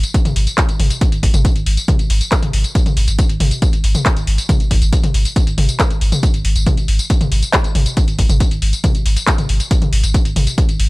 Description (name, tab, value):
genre	driving peak-time techno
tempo	138 BPM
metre	4/4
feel	straight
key	unclear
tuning	A4 = 438 Hz
part	warm sub bass	bass	0.0-10.9 s	G#1	-17 LUFS	equal	tube saturation, sidechain pumping, low-pass filter
part	techno drum kit	drums	0.0-10.9 s	handclaps, hi-hat, tambourine, toms	-20 LUFS	left 1 dB	none
part	electronic kick drum	drums	0.1-10.7 s	none	-16 LUFS	equal	none
room	little or no reverb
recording	none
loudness	-13 LUFS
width	side -22 dB against mid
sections	0.0-10.9 A section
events	none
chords	none